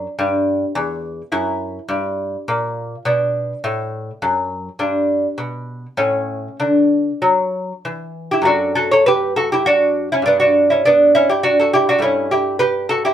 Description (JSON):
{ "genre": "classical, baroque-style dance for lute", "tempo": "102 BPM", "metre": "3/4", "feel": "rubato", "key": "D major", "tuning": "A4 = 439 Hz", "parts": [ { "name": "lute", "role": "solo", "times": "0.0-13.1 s", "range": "E2 to C#5", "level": "-15 LUFS", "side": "equal", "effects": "none" } ], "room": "moderate studio reverb, RT60 0.5 s", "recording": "band playing live in one room", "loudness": "-15 LUFS", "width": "side -10 dB against mid", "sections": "0.0-8.5 A section; 8.5-13.1 A section", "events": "none", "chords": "0.0 N.C.; 1.3 F#7; 3.1 Bm; 4.8 G; 6.0 A; 6.6 D; 8.5 D/F#; 10.2 G; 12.0 A7/G" }